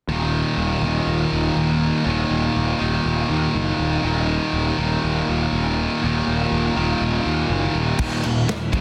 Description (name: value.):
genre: heavy metal.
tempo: 121 BPM.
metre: 4/4.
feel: straight.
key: unclear.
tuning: A4 = 440 Hz.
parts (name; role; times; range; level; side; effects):
high-gain distorted guitar; riff; 0.1-8.8 s; Eb2 to Gb3; -23 LUFS; equal; distortion.
fuzz picked electric bass; bass; 0.1-8.8 s; Eb1 to Eb2; -25 LUFS; equal; overdrive.
modern studio drum kit; drums; 8.0-8.8 s; crash cymbal, kick drum, ride cymbal, snare drum; -26 LUFS; equal; none.
room: little or no reverb.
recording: dense, heavily limited modern master.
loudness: -21 LUFS.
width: mono.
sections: 0.1-8.0 A section.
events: none.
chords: 0.1 Eb5; 8.0 Ebm.